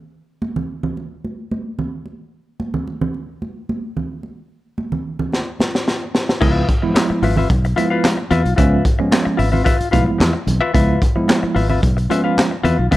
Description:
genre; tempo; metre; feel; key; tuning
funk; 111 BPM; 4/4; straight; Db mixolydian; A4 = 442 Hz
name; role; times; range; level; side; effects
congas; percussion; 0.4-13.0 s; none; -25 LUFS; right 2 dB; none
crunchy breakbeat drum kit; drums; 5.3-13.0 s; crash cymbal, handclaps, hi-hat, kick drum, snare drum; -18 LUFS; equal; none
semi-hollow electric guitar; accompaniment; 6.4-13.0 s; F4 to F5; -21 LUFS; left 5 dB; none
mellow tine electric piano; stabs; 6.4-13.0 s; E3 to E4; -20 LUFS; right 2 dB; fast stereo tremolo
fingered electric bass; bass; 6.4-13.0 s; Ab1 to E2; -17 LUFS; equal; none
room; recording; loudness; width
light reverb, small room reverb; none; -15 LUFS; side -16 dB against mid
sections
0.0-6.4 A section; 6.4-13.0 B section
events
drum fill 5.3-6.4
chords
0.0 N.C.; 6.4 Db7#9

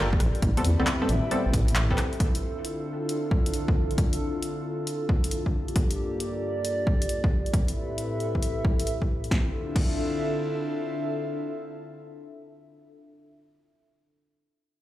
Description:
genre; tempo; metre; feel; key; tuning
UK garage, two-step garage; 135 BPM; 4/4; swing 67% on 16ths; D minor; A4 = 441 Hz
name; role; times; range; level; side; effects
airy breathy pad; sustained chords; 0.0-12.8 s; G2 to B4; -34 LUFS; equal; chorus, sidechain pumping
punchy chord stab; stabs; 0.0-2.0 s; G3 to A4; -29 LUFS; equal; chorus, dub echo
deep soft wobble bass; bass; 0.0-1.9 s; G1 to E2; -24 LUFS; equal; chorus
warbly tape-like pad; texture; 0.0-13.0 s; D4 to E5; -32 LUFS; equal; chorus, built-in reverb, sidechain pumping
electronic kick drum; drums; 0.1-9.9 s; none; -25 LUFS; equal; overdrive
punchy analog drum machine; drums; 0.2-9.9 s; crash cymbal, handclaps, hi-hat, rim click, snare drum; -33 LUFS; left 1 dB; overdrive
room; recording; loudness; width
light reverb, digital ambience; played on a big sound system in a bare room, large studio reverb; -24 LUFS; side -14 dB against mid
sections
0.0-9.3 A section; 9.3-12.9 B section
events
filter sweep on analog synth pad 0.0-9.3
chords
0.2 Am9; 2.2 Dm9; 5.5 Gm9; 7.3 Am9; 9.3 Dm9

